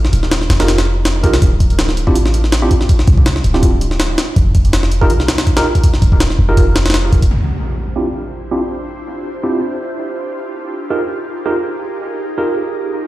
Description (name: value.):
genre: drum and bass, jungle.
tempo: 163 BPM.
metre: 4/4.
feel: swing 54% on 16ths.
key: D minor.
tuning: A4 = 439 Hz.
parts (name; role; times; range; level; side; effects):
jungle sampler-style drum kit; drums; 0.0-7.3 s; hi-hat, kick drum, snare drum; -13 LUFS; equal; none.
warm 808-style bass; bass; 0.1-7.3 s; D1 to C2; -15 LUFS; equal; tube saturation.
tine electric piano; stabs; 0.6-12.5 s; C4 to Bb4; -20 LUFS; right 1 dB; overdrive, fast stereo tremolo, vintage 12-bit sampler grit, low-pass filter, dub echo.
ethereal airy pad; sustained chords; 8.1-13.1 s; D4 to C5; -23 LUFS; right 2 dB; ensemble chorus, built-in reverb, phaser, vintage 12-bit sampler grit.
impact; sound effects; 7.3-8.8 s; none; -22 LUFS; equal; none.
room: light reverb, digital ambience.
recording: played on a big sound system in a bare room, stone room reverb.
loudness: -12 LUFS.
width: side -16 dB against mid.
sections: 0.0-7.3 A section; 7.3-13.1 B section.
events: impact 7.3-8.8; filter sweep on tine electric piano 7.3-13.1.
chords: 0.0 Fm11; 1.4 D7(no3); 4.4 F7(no3); 7.3 Dm11; 10.3 Fm11.